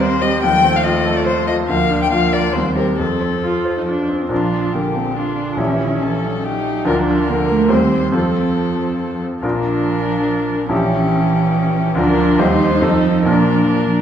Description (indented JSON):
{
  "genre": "quick classical-period movement for piano quartet",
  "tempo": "140 BPM",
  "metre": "3/4",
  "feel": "straight",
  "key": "Bb major",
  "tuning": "A4 = 440 Hz",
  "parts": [
    { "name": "warm violin", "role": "melody", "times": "0.0-14.0 s", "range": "Fb4 to G5", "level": "-21 LUFS", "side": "left 5 dB", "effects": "none" },
    { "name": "warm cello", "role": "second line", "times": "0.0-14.0 s", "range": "D3 to A3", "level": "-20 LUFS", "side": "right 5 dB", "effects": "none" },
    { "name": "bright grand piano", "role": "accompaniment", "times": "0.0-14.0 s", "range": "Bb1 to C5", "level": "-18 LUFS", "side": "left 1 dB", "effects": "none" },
    { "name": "rich viola", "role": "accompaniment", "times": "0.0-14.0 s", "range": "A3 to F4", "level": "-22 LUFS", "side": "right 1 dB", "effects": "none" }
  ],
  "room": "wet recital hall reverb, RT60 1.5 s",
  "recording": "heard from further back in the room",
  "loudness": "-14 LUFS",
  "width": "side -9 dB against mid",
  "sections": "0.0-4.3 A section; 4.3-14.0 B section",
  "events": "none",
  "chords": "0.4 F7/Eb; 1.7 Bb/D; 2.6 Cm/Eb; 3.0 F; 4.3 Bb; 5.6 Bbdim7; 6.9 Bb/D; 7.7 Cm/Eb; 8.1 F; 9.4 Bb; 10.7 Bbdim7; 12.0 Bb/D; 12.4 Cm/Eb; 12.8 F7; 13.3 Bb"
}